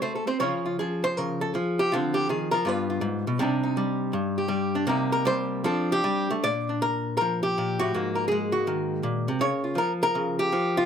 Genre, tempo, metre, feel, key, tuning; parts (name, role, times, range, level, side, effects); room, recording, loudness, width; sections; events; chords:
solo jazz; 160 BPM; 4/4; swing 66% on 8ths, rubato; A4 = 441 Hz
archtop guitar, miked and amplified; solo; 0.0-10.9 s; G2 to D5; -24 LUFS; equal
moderate club reverb, RT60 0.5 s; close, detailed microphones; -24 LUFS; side -8 dB against mid
0.0-6.4 A section; 6.4-10.9 B section
hollow-body jazz guitar solo 0.0-6.4
0.4 Db; 1.9 Dm7b5; 2.7 G7b9; 3.4 Cmadd9; 4.9 Cm7; 5.6 F69; 6.4 Bb; 7.9 Ab7sus2; 9.4 Db6